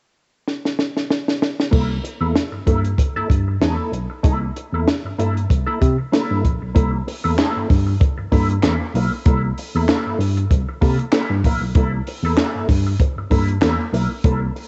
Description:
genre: funk.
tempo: 96 BPM.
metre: 4/4.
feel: swing 56% on 16ths.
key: C mixolydian.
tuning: A4 = 440 Hz.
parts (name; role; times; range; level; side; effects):
compact cocktail drum kit; drums; 0.5-14.7 s; crash cymbal, handclaps, hi-hat, kick drum, snare drum; -21 LUFS; equal; cassette tape.
mellow electric guitar; accompaniment; 1.7-14.6 s; Bb3 to Bb4; -26 LUFS; equal; wah, cassette tape.
tine electric piano; bass; 1.7-14.5 s; Bb1 to C3; -24 LUFS; equal; none.
room: light reverb, studio ambience.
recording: home recording on cassette, nothing above 8.0 kHz.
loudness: -19 LUFS.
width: mono.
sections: 0.0-1.7 A section; 1.7-6.8 B section; 6.8-14.7 C section.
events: drum fill 0.5-1.7.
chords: 0.0 N.C.; 1.7 C6.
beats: 0.47 1.10 | 1.73 2.36 2.99 3.61 | 4.24 4.87 5.50 6.12 | 6.75 7.38 8.00 8.63 | 9.25 9.88 10.50 11.13 | 11.75 12.37 12.99 13.62 | 14.24.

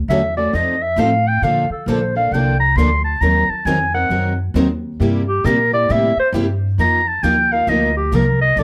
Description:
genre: acoustic string swing (jazz manouche).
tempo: 134 BPM.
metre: 4/4.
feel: swing 62% on 8ths.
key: Bb major.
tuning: A4 = 442 Hz.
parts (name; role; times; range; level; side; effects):
upright bass; bass; 0.0-8.6 s; Bb1 to Bb2; -22 LUFS; equal; none.
breathy clarinet; melody; 0.1-8.6 s; G4 to C6; -19 LUFS; equal; plate reverb.
picked plugged-in steel-string acoustic guitar; accompaniment; 0.1-8.6 s; C3 to Bb4; -24 LUFS; equal; none.
picked steel-string acoustic guitar; accompaniment; 0.1-8.6 s; C3 to Bb4; -28 LUFS; equal; none.
room: moderate club ambience, RT60 0.5 s.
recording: none.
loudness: -17 LUFS.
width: mono.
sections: 0.0-1.4 A section; 1.4-8.6 A section.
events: clarinet solo 0.0-8.6.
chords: 0.0 Dmaj7; 0.5 F7; 1.4 Bbmaj7; 3.2 Ebm6; 5.0 C7; 6.8 F7sus4.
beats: 0.09 0.53 0.98 | 1.43 1.88 2.32 2.77 | 3.22 3.66 4.11 4.56 | 5.00 5.45 5.90 6.34 | 6.79 7.24 7.68 8.13 | 8.57.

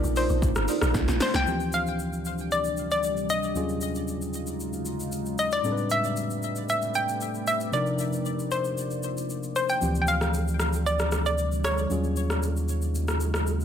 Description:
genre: amapiano.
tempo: 115 BPM.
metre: 4/4.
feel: straight.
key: unclear.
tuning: A4 = 441 Hz.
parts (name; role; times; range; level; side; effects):
hollow square pluck; melody; 0.0-13.2 s; C5 to G5; -28 LUFS; left 1 dB; chorus, ping-pong delay.
deep dark ambient pad; sustained chords; 0.0-13.6 s; C3 to D5; -34 LUFS; equal; chorus, built-in reverb, sidechain pumping.
deep log drum bass; bass; 0.0-1.5 s; G1 to C2; -26 LUFS; equal; none.
deep house drum kit; drums; 0.0-13.6 s; hi-hat, kick drum, rim click, shaker, snare drum; -31 LUFS; left 1 dB; overdrive.
marimba with medium hard mallets; stabs; 0.2-0.8 s; Eb4 to D5; -33 LUFS; right 7 dB; ping-pong delay.
tine electric piano; accompaniment; 1.5-13.6 s; D2 to B4; -31 LUFS; left 1 dB; none.
warm sub bass; bass; 9.8-13.6 s; D2 to Eb2; -27 LUFS; equal; none.
room: light reverb.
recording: none.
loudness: -24 LUFS.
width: side -8 dB against mid.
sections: 0.0-1.5 A section; 1.5-13.6 B section.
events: drop 0.0-1.5; drum fill 0.9-1.5.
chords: 0.0 Cm11; 1.5 Dm11; 3.6 Ebm11; 5.6 Am11; 7.7 Cm11; 9.8 Dm11; 11.9 Ebm11.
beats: 0.42 0.94 | 1.47 1.99 2.51 3.03 | 3.55 4.08 4.60 5.12 | 5.64 6.16 6.68 7.21 | 7.73 8.25 8.77 9.29 | 9.81 10.34 10.86 11.38 | 11.90 12.42 12.95 13.47.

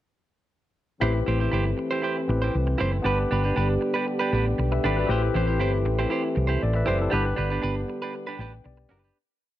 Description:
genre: disco.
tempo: 118 BPM.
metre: 4/4.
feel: straight.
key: A minor.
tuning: A4 = 441 Hz.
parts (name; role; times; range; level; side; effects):
barky tine electric piano; accompaniment; 1.0-9.2 s; B3 to G5; -29 LUFS; moving between left 9 dB and left 1 dB; overdrive, auto-pan.
clean electric guitar; accompaniment; 1.0-9.2 s; D4 to C5; -29 LUFS; right 4 dB; none.
dark French horn section; sustained chords; 1.0-9.1 s; D3 to G4; -31 LUFS; right 2 dB; none.
hollow-body short-scale fingered electric bass; bass; 1.0-9.1 s; F#1 to C2; -25 LUFS; equal; none.
room: light reverb.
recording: none.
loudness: -22 LUFS.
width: side -13 dB against mid.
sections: 1.0-9.2 groove.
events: fade-out 7.1-9.2; tine electric piano fill 8.1-9.2.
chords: 1.0 Am7; 3.0 G; 5.1 Am7; 7.1 G.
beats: | 1.00 1.51 2.02 2.53 | 3.04 3.55 4.06 4.57 | 5.08 5.59 6.10 6.61 | 7.12 7.62 8.13 8.64.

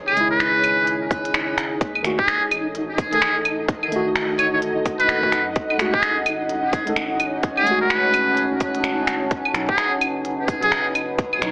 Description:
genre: future garage.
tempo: 128 BPM.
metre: 4/4.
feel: swing 61% on 16ths.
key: unclear.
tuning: A4 = 441 Hz.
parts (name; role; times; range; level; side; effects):
deep dark ambient pad; sustained chords; 0.0-11.5 s; C#4 to A5; -26 LUFS; equal; chorus, built-in reverb, sidechain pumping.
warm sub bass; bass; 0.0-11.5 s; F#1 to F#2; -43 LUFS; equal; sidechain pumping.
flickering grainy texture; texture; 0.0-11.5 s; D#4; -30 LUFS; equal; built-in reverb.
trumpet with metal mute; melody; 0.1-10.9 s; G#4 to C#5; -21 LUFS; equal; digital delay.
mellow tine electric piano; accompaniment; 0.1-11.5 s; B2 to A4; -27 LUFS; equal; medium stereo tremolo, sidechain pumping, digital delay.
organic electronic drum kit; drums; 0.1-11.5 s; claves, finger snaps, hi-hat; -23 LUFS; equal; overdrive.
electronic kick drum; drums; 1.1-11.3 s; none; -23 LUFS; equal; overdrive.
room: moderate recital hall reverb, RT60 1.4 s, digital ambience.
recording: heavily compressed radio sound, vinyl crackle, AM radio sound.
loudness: -18 LUFS.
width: side -30 dB against mid.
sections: 0.0-11.5 A section.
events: none.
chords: 0.0 C#m; 1.8 D#dim; 5.6 F#madd9; 9.3 B.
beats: 0.40 0.87 1.34 | 1.81 2.28 2.75 3.22 | 3.69 4.15 4.62 5.09 | 5.56 6.03 6.50 6.97 | 7.43 7.90 8.37 8.84 | 9.31 9.78 10.25 10.72 | 11.19.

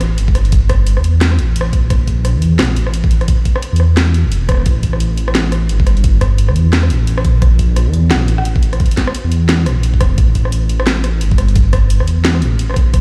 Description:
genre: half-time drum and bass.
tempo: 174 BPM.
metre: 4/4.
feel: swing 59% on 16ths, half-time.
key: unclear.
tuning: A4 = 442 Hz.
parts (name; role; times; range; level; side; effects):
dark detuned saw bass; bass; 0.0-13.0 s; E1 to E2; -15 LUFS; equal; none.
drum and bass drum kit; drums; 0.0-13.0 s; hi-hat, rim click, snare drum; -22 LUFS; equal; none.
sub drop; sound effects; 0.0-0.5 s; none; barely audible; none; none.
electronic kick drum; drums; 0.3-13.0 s; none; -16 LUFS; equal; none.
room: little or no reverb.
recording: played on a big sound system in a bare room, stone room reverb.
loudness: -13 LUFS.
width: mono.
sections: 0.0-13.0 A section.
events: impact 0.0-0.5.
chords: none.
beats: 0.18 | 0.52 0.87 1.21 1.56 | 1.90 2.25 2.59 2.94 | 3.28 3.63 3.97 4.32 | 4.66 5.00 5.35 5.70 | 6.04 6.38 6.73 7.07 | 7.42 7.76 8.11 8.45 | 8.80 9.14 9.49 9.83 | 10.18 10.52 10.87 11.21 | 11.56 11.90 12.25 12.59 | 12.94.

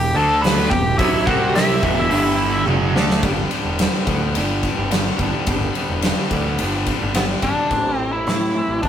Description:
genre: quiet-loud alternative rock.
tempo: 107 BPM.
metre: 4/4.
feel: straight.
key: unclear.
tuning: A4 = 440 Hz.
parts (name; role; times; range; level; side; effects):
biting lead guitar; melody; 0.0-2.6, 7.2-8.9 s; B3 to B5; -20 LUFS; equal; overdrive.
distorted electric guitar; riff; 0.0-3.2 s; E2 to D4; -21 LUFS; right 4 dB; distortion.
high-gain distorted guitar; riff; 0.0-7.7 s; E2 to D4; -26 LUFS; left 6 dB; distortion.
overdriven picked electric bass; bass; 0.0-8.9 s; E1 to A2; -23 LUFS; equal; none.
big rock drum kit; drums; 0.4-8.9 s; crash cymbal, hi-hat, kick drum, ride cymbal, snare drum, toms; -22 LUFS; equal; none.
twangy electric guitar; arpeggios; 3.2-8.9 s; E2 to G4; -27 LUFS; right 4 dB; none.
room: moderate booth ambience, RT60 0.2 s.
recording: rough rehearsal-room recording.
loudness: -16 LUFS.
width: side -9 dB against mid.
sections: 0.0-3.2 A section; 3.2-7.7 B section; 7.7-8.9 C section.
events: drum fill 2.7-3.2.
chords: 0.2 D5; 0.7 Em; 1.3 C5; 1.8 E5; 2.1 G5; 2.7 Dmaj7/F#; 3.2 G; 7.7 Am.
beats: 0.44 | 1.00 1.55 2.11 2.67 | 3.23 3.79 4.35 4.91 | 5.47 6.03 6.59 7.15 | 7.71 8.28 8.84.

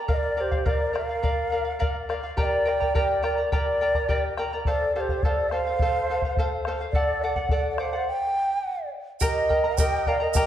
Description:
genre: andean folk, Andean ensemble.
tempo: 105 BPM.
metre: 2/4.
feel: straight.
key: unclear.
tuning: A4 = 438 Hz.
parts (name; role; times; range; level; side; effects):
charango; accompaniment; 0.0-10.5 s; G4 to Bb5; -29 LUFS; left 2 dB; none.
mellow large quena; melody; 0.1-10.5 s; C5 to G5; -26 LUFS; equal; slapback echo.
reedy large quena; second line; 0.1-10.5 s; G4 to Eb5; -30 LUFS; right 2 dB; none.
bombo; percussion; 0.1-10.5 s; none; -27 LUFS; equal; none.
tube shaker; percussion; 9.2-10.5 s; none; -33 LUFS; right 10 dB; none.
room: wet recital hall reverb, RT60 1.6 s.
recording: dark, warm production.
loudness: -22 LUFS.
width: side -11 dB against mid.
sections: 0.1-9.2 A section; 9.2-10.5 B section.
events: stop 8.1-9.2.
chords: 0.1 Bb; 2.4 Gm; 4.7 F; 6.9 D; 8.1 N.C.; 9.2 Eb.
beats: | 0.09 0.66 | 1.23 1.80 | 2.38 2.94 | 3.52 4.08 | 4.66 5.22 | 5.79 6.37 | 6.93 7.50 | 8.07 8.64 | 9.21 9.78 | 10.35.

